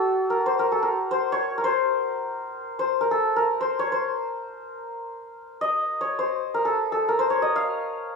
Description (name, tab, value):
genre	Persian modal ensemble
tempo	free time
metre	none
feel	none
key	unclear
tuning	A4 = 439 Hz
part	santur	solo	0.0-8.2 s	Gb4+45c to F5	-22 LUFS	left 1 dB	none
room	wet studio reverb, RT60 0.8 s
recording	band playing live in one room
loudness	-22 LUFS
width	side -4 dB against mid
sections	0.0-8.2 A section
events	none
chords	none